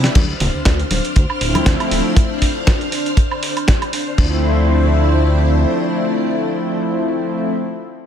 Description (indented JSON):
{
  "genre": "nu-disco, nu disco",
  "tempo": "119 BPM",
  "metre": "4/4",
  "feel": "swing 55% on 16ths",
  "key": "D minor",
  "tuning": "A4 = 440 Hz",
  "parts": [
    { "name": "string machine, full ensemble", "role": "sustained chords", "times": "0.0-7.5 s", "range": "D4 to F6", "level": "-23 LUFS", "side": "equal", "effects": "ensemble chorus, sidechain pumping" },
    { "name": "chorused synth bass", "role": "bass", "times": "0.0-5.7 s", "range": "D1 to D2", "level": "-17 LUFS", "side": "equal", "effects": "none" },
    { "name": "dusty soul sampler-style drum kit", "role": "drums", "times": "0.0-4.3 s", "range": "crash cymbal, hi-hat, shaker, snare drum, woodblock", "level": "-22 LUFS", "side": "right 1 dB", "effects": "none" },
    { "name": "kick drum", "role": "drums", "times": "0.2-4.3 s", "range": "none", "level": "-14 LUFS", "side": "equal", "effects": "none" },
    { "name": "congas", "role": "percussion", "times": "0.2-1.6 s", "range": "none", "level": "-23 LUFS", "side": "left 2 dB", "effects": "none" },
    { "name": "warm analog pad", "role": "accompaniment", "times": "1.4-7.5 s", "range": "F3 to E4", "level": "-20 LUFS", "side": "left 1 dB", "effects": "chorus, ping-pong delay" }
  ],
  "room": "small room ambience",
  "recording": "none",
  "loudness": "-14 LUFS",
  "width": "side -9 dB against mid",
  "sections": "0.1-4.2 A section; 4.2-8.1 B section",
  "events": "none",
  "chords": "0.1 Dm7",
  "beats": "| 0.15 0.65 1.16 1.66 | 2.17 2.67 3.17 3.68 | 4.18 4.69 5.19 5.70 | 6.20 6.70 7.21"
}